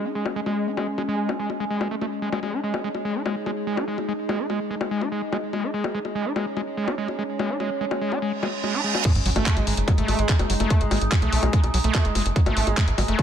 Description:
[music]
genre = psychedelic trance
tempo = 145 BPM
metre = 4/4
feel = straight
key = unclear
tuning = A4 = 440 Hz
[part]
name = overtone-sweeping drone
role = sustained chords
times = 0.0-13.2 s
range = G#3 to D#4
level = -29 LUFS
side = equal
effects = chorus, built-in reverb, sidechain pumping
[part]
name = screaming distorted acid line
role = riff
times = 0.0-13.2 s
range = F#3 to D#4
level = -27 LUFS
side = moving between left 4 dB and right 4 dB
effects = distortion, chorus, auto-pan, vintage 12-bit sampler grit, sidechain pumping, digital delay
[part]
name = garage drum kit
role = drums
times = 0.3-13.2 s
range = bongos, crash cymbal, handclaps, hi-hat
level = -29 LUFS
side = left 4 dB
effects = low-pass filter on perc, small room ambience, low-pass filter on hats, low-pass filter on cymbals, low-pass filter on snare
[part]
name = reverse cymbal and sub drop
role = sound effects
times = 8.4-10.7 s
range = none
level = -28 LUFS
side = right 4 dB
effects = none
[part]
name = electronic kick drum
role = drums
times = 9.0-13.2 s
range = none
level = -20 LUFS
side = equal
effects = small room ambience
[part]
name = tight sequencer bass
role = bass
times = 9.2-13.2 s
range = F#1 to B1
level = -23 LUFS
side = equal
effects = none
[sound]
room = light reverb, digital ambience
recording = none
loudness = -22 LUFS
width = side -9 dB against mid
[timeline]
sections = 0.0-9.0 A section; 9.0-13.2 B section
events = reverse cymbal 8.4-9.0; drop 9.0-13.2; impact 9.0-10.7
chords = 0.0 G#5

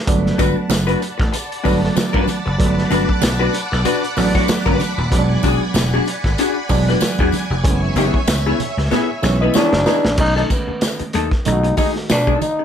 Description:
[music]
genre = funk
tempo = 95 BPM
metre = 4/4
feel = swing 56% on 16ths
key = unclear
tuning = A4 = 439 Hz
[part]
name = string machine, violins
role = sustained chords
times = 0.1-10.2 s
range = C#5 to B5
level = -25 LUFS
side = equal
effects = ensemble chorus
[part]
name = reed electric piano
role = stabs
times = 0.1-12.5 s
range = D#3 to D#5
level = -22 LUFS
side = right 3 dB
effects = none
[part]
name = vintage slap bass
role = bass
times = 0.1-12.3 s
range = D#1 to B2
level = -20 LUFS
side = equal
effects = none
[part]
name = crunchy breakbeat drum kit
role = drums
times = 0.1-12.6 s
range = crash cymbal, hi-hat, kick drum, snare drum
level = -20 LUFS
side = equal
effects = none
[part]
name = tambourine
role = percussion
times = 0.1-12.6 s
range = none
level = -31 LUFS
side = left 4 dB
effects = none
[part]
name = vintage hollow-body jazz guitar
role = accompaniment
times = 0.4-12.6 s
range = A3 to C#5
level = -21 LUFS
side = left 4 dB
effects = none
[part]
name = congas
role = percussion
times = 0.4-12.6 s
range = none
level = -28 LUFS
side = right 7 dB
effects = none
[part]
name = growling trombone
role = melody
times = 9.6-12.6 s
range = B3 to D#4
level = -19 LUFS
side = left 1 dB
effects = plate reverb
[sound]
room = moderate club ambience, RT60 0.5 s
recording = none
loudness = -15 LUFS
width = side -8 dB against mid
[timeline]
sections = 0.1-10.2 A section; 10.2-12.6 B section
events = drum fill 8.9-10.2; reed electric piano fill 8.9-10.2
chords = 0.1 Gmaj7; 5.1 E9; 7.6 F#9sus4; 10.2 B13

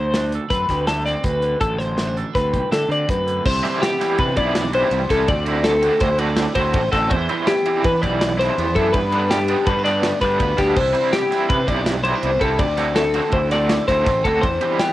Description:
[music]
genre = math rock and midwest emo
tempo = 164 BPM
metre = 5/4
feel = straight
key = unclear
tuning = A4 = 442 Hz
[part]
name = twangy electric guitar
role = accompaniment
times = 0.0-14.9 s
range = D2 to A4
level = -29 LUFS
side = right 8 dB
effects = wide subtle chorus, cassette tape
[part]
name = twelve-string electric guitar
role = arpeggios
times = 0.0-14.9 s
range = G4 to D5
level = -20 LUFS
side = left 2 dB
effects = analog chorus, cassette tape
[part]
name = fuzz fingered electric bass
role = bass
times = 0.0-14.6 s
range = A1 to E3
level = -24 LUFS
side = equal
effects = overdrive
[part]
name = modern studio drum kit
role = drums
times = 0.1-14.9 s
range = crash cymbal, hi-hat, kick drum, ride cymbal, snare drum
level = -24 LUFS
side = equal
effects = cassette tape
[part]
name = raw garage guitar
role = riff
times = 3.6-14.9 s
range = C3 to G4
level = -24 LUFS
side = right 3 dB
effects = overdrive, tremolo, cassette tape
[sound]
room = light reverb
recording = home recording on cassette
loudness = -16 LUFS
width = side -15 dB against mid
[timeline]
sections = 0.0-3.5 A section; 3.5-14.9 B section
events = none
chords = 0.0 D7; 3.5 Cmaj9; 5.3 D9; 7.1 Cmaj9/E; 8.9 G; 10.8 Cmaj9; 12.6 D9

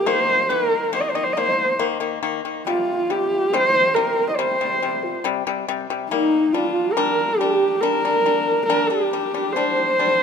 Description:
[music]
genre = mongolian traditional, Mongolian folk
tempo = 70 BPM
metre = 4/4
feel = straight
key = C minor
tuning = A4 = 440 Hz
[part]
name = dark horsehead fiddle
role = melody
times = 0.0-10.2 s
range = Eb4 to Eb5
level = -19 LUFS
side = equal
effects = none
[part]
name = mellow xiao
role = second line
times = 0.0-10.2 s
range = Eb4 to Eb5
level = -27 LUFS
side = right 4 dB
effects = none
[part]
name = pipa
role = arpeggios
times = 0.1-10.2 s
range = C3 to D4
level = -24 LUFS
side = left 7 dB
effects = none
[sound]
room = moderate huge ambient reverb, RT60 4.3 s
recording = none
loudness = -18 LUFS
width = side -6 dB against mid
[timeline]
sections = 0.0-10.2 A section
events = none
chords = 0.0 Eb5; 2.7 C5; 6.1 Gm

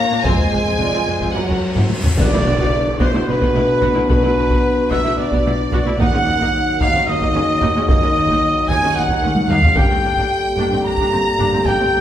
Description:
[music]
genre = cinematic, epic orchestral film score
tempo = 221 BPM (eighths)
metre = 7/8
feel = straight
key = unclear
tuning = A4 = 439 Hz
[part]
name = rich symphonic violin section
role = melody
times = 0.0-12.0 s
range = B4 to Bb5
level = -28 LUFS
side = left 2 dB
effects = none
[part]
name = warm symphonic violin section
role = second line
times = 0.0-12.0 s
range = A#4 to Bb5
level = -26 LUFS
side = equal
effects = none
[part]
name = dark trombone section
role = sustained chords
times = 0.0-12.0 s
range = B2 to Bb3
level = -25 LUFS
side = right 1 dB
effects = none
[part]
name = mellow French horn section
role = sustained chords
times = 0.0-12.0 s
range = F#3 to G4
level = -23 LUFS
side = left 3 dB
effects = none
[part]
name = rich symphonic viola section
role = accompaniment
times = 0.1-12.0 s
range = F#3 to F#4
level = -26 LUFS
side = right 1 dB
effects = none
[part]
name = rich symphonic cello section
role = bass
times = 0.1-12.0 s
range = D#2 to B2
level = -26 LUFS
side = right 2 dB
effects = none
[part]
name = dark symphonic double bass section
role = bass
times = 0.2-12.0 s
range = F1 to D#2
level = -27 LUFS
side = right 2 dB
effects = none
[part]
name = taiko ensemble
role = drums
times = 0.2-12.0 s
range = none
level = -20 LUFS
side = equal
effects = none
[part]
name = cymbal swell and impact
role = sound effects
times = 1.4-4.1 s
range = none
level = -30 LUFS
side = equal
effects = none
[part]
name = mellow trumpet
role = stabs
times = 2.2-12.0 s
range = B4 to Bb5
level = -19 LUFS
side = right 1 dB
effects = none
[part]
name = tam-tam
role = percussion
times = 2.2-4.3 s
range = none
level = -30 LUFS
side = left 1 dB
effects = none
[part]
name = timpani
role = percussion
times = 2.2-3.0 s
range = B2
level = -27 LUFS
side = left 1 dB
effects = none
[sound]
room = wet recital hall reverb, RT60 1.5 s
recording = recorded in a church or concert hall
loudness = -14 LUFS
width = side -11 dB against mid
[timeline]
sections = 0.0-2.2 A section; 2.2-12.0 B section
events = cymbal swell 1.4-2.2; drum fill 1.8-2.2, 9.4-9.8; band accent 2.2-2.7; impact 2.2-4.1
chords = 0.2 Fm; 1.3 F#; 2.2 Bm; 6.0 D#m; 9.8 Gm

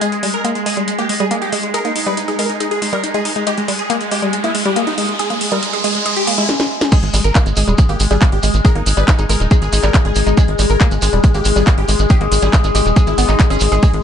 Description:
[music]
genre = psychedelic trance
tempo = 139 BPM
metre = 4/4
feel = straight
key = unclear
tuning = A4 = 439 Hz
[part]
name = supersaw stab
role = melody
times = 0.0-14.0 s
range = G#3 to B4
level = -22 LUFS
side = right 1 dB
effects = phaser, sidechain pumping, dub echo
[part]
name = overtone-sweeping drone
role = sustained chords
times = 0.0-14.0 s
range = G#3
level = -24 LUFS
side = left 1 dB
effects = chorus, built-in reverb, sidechain pumping
[part]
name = woody wave-folded pluck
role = riff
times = 0.0-13.9 s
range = G3 to G#4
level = -22 LUFS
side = moving between left 4 dB and right 4 dB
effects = chorus, auto-pan, sidechain pumping, tape echo
[part]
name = techno drum kit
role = drums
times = 0.0-14.0 s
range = crash cymbal, handclaps, hi-hat, snare drum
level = -22 LUFS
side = left 1 dB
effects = none
[part]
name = riser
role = sound effects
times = 2.3-6.5 s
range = none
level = -24 LUFS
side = right 1 dB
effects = none
[part]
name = deep dark ambient pad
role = texture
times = 0.1-14.0 s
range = G#4 to G#5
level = -25 LUFS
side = left 7 dB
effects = chorus, built-in reverb, sidechain pumping
[part]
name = electronic kick drum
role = drums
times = 6.9-13.9 s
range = none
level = -12 LUFS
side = equal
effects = none
[part]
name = shekere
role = percussion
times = 6.9-13.9 s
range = none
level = -25 LUFS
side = right 4 dB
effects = none
[part]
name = tight sequencer bass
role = bass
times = 7.0-14.0 s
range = D#1 to G#1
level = -16 LUFS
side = equal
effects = none
[sound]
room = light reverb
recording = nothing above 10.7 kHz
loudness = -12 LUFS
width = side -8 dB against mid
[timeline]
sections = 0.0-6.9 A section; 6.9-14.0 B section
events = build-up 0.0-6.9; filter sweep on synth arpeggio sound 0.0-6.9; riser 2.3-6.5; drum fill 6.5-6.9; drop 6.9-14.0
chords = 0.0 G#5

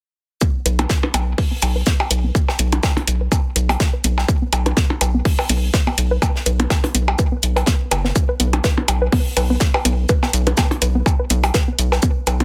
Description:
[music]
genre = minimal techno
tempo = 124 BPM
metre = 4/4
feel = swing 55% on 16ths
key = unclear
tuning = A4 = 445 Hz
[part]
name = hollow square pluck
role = riff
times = 0.4-12.4 s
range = B3 to B4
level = -27 LUFS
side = equal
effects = chorus, cassette tape, sidechain pumping, tape echo
[part]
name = electronic kick drum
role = drums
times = 0.4-12.1 s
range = none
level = -20 LUFS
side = equal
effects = none
[part]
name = modern studio drum kit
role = drums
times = 0.4-12.4 s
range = hi-hat, shaker, snare drum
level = -30 LUFS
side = equal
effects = high-pass filter on hats, high-pass filter on snare, high-pass filter on perc, high-pass filter on room
[part]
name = rubbery square bass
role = bass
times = 0.7-12.4 s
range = F#1 to B1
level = -21 LUFS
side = equal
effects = sidechain pumping
[part]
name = electronic hi-hat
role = drums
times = 0.7-12.4 s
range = none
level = -22 LUFS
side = equal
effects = none
[part]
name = percussion blips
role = percussion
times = 0.8-12.4 s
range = none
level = -25 LUFS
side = equal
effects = tape echo
[sound]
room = little or no reverb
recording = none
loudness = -18 LUFS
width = mono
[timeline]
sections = 0.4-12.4 A section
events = filter sweep on synth arpeggio sound 0.4-12.4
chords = 0.4 B5

